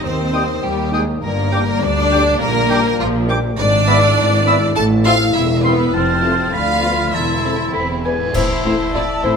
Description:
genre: cinematic, playful, whimsical film cue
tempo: 101 BPM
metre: 2/4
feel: straight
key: A minor from 3.6 s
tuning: A4 = 440 Hz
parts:
  - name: rich chamber violin section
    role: second line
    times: 0.0-9.3 s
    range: C4 to A5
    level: -20 LUFS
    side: left 1 dB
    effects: none
  - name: rich studio viola section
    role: accompaniment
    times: 0.0-9.3 s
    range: F3 to A4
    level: -22 LUFS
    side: right 2 dB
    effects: none
  - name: concert harp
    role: arpeggios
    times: 0.0-9.4 s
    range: G2 to C5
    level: -22 LUFS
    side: left 8 dB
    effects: none
  - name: dark chamber cello section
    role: bass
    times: 0.0-9.3 s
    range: D2 to Bb2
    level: -23 LUFS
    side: right 2 dB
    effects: none
  - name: rich studio double bass section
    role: bass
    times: 0.0-9.3 s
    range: E1 to Eb2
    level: -22 LUFS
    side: right 3 dB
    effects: none
  - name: rich chamber violin section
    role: melody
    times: 0.3-9.4 s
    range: A4 to E6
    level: -30 LUFS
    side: left 2 dB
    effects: none
  - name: clear oboe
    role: second line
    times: 0.3-9.4 s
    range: E5 to C6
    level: -26 LUFS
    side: right 1 dB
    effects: none
  - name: mellow small flute group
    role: second line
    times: 0.3-9.4 s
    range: A5 to F6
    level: -24 LUFS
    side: equal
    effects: none
  - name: mellow French horn section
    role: sustained chords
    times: 0.3-9.4 s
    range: G3 to A4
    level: -27 LUFS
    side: left 3 dB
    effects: none
  - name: cymbal swell, clash cymbals and concert bass drum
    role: percussion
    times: 5.9-9.4 s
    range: none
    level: -26 LUFS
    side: right 1 dB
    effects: none
  - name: folk marimba with soft mallets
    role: melody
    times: 7.7-9.4 s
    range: A4 to D5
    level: -23 LUFS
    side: left 7 dB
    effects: none
room: moderate scoring stage reverb, RT60 1.9 s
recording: none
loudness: -14 LUFS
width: side -6 dB against mid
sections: 0.0-8.3 A section; 8.3-9.4 B section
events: band accent 8.3-8.9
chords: 0.0 Cm/Eb; 1.2 Gm; 2.4 Gm/Bb; 3.6 E7/G#; 4.8 Am; 5.9 F; 6.5 Bdim/D; 7.1 Am/E; 7.7 E; 8.3 Am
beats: | 0.04 0.63 | 1.22 1.82 | 2.41 3.00 | 3.58 4.17 | 4.76 5.35 | 5.94 6.54 | 7.14 7.75 | 8.35 8.94

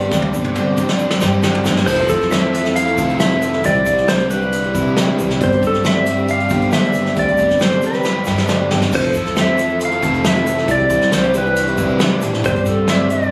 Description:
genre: folk rock and heartland rock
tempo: 136 BPM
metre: 4/4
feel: straight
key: unclear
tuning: A4 = 440 Hz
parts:
  - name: pedal steel guitar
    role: melody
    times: 0.0-13.3 s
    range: A4 to F5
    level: -21 LUFS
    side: equal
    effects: none
  - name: clear grand piano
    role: accompaniment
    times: 0.0-13.3 s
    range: C4 to A5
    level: -32 LUFS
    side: equal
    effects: none
  - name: picked twelve-string acoustic guitar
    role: accompaniment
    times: 0.0-13.3 s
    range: G2 to A4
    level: -25 LUFS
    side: equal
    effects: none
  - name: tonewheel organ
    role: sustained chords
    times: 0.0-13.3 s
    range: D3 to C5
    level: -32 LUFS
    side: equal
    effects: none
  - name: crunchy overdriven guitar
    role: riff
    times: 0.0-13.3 s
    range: G2 to A4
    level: -25 LUFS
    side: equal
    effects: none
  - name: upright bass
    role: bass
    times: 0.0-13.3 s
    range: F1 to C3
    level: -24 LUFS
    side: equal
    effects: none
  - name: soft brush drum kit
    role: drums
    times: 0.0-13.2 s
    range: crash cymbal, hi-hat, kick drum, snare drum, toms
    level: -23 LUFS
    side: equal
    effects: none
  - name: tube shaker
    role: percussion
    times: 0.1-13.3 s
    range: none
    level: -41 LUFS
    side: equal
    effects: none
room: light reverb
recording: recorded on a phone in the room, club reverb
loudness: -16 LUFS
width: mono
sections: 0.0-1.9 A section; 1.9-13.3 A section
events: drum fill 0.1-1.9, 8.0-8.9; grand piano fill 8.3-8.9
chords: 0.0 Gsus4; 1.9 Fmaj7; 3.6 Cadd9; 5.4 Gsus4; 8.9 Fmaj7; 10.7 Cadd9; 12.4 Gsus4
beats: | 0.11 0.56 1.00 1.44 | 1.88 2.32 2.76 3.20 | 3.64 4.08 4.52 4.96 | 5.40 5.84 6.28 6.72 | 7.16 7.60 8.04 8.48 | 8.92 9.36 9.80 10.24 | 10.68 11.12 11.56 12.00 | 12.44 12.88

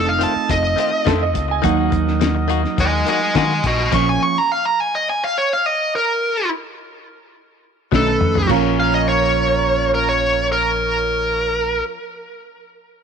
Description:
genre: straight-eighth soul blues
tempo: 105 BPM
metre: 4/4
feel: straight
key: Bb minor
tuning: A4 = 439 Hz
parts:
  - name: smooth overdriven lead guitar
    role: melody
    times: 0.0-11.8 s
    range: Gb4 to Db6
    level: -18 LUFS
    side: equal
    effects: none
  - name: reed electric piano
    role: accompaniment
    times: 0.0-4.4, 7.9-11.8 s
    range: D#3 to Eb4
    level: -23 LUFS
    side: right 12 dB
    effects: spring reverb
  - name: mellow horn section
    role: sustained chords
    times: 0.0-4.4, 7.9-11.5 s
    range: D#4 to Eb5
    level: -28 LUFS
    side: left 1 dB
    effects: none
  - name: picked electric bass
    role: bass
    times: 0.0-4.2, 7.9-11.8 s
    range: F1 to Eb3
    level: -23 LUFS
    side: left 1 dB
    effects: none
  - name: direct-recorded clean electric guitar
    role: stabs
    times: 0.1-4.2, 7.9-12.0 s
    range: Eb3 to Gb4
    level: -27 LUFS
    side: left 14 dB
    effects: tape echo
  - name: cloth-damped thuddy drum kit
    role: drums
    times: 0.2-4.1, 7.9-8.6 s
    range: crash cymbal, hi-hat, kick drum, snare drum, toms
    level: -23 LUFS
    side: left 5 dB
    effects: none
  - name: clear upright piano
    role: second line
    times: 1.1-2.6, 8.5-11.8 s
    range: F4 to Ab5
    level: -26 LUFS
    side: right 11 dB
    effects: none
room: light reverb, small room reverb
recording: 1960s-style stereo with parts hard left and right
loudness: -16 LUFS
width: side -6 dB against mid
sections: 0.0-8.5 A section; 8.5-10.8 B section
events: stop 3.9-7.9; drum fill 7.9-8.5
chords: 0.0 F7; 1.6 Ebm; 3.9 Bbm; 7.9 B7; 8.5 Bbm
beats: 0.50 1.07 | 1.64 2.21 2.78 3.35 | 3.93 4.50 5.07 5.64 | 6.21 6.78 7.35 7.92 | 8.49 9.07 9.64 10.21

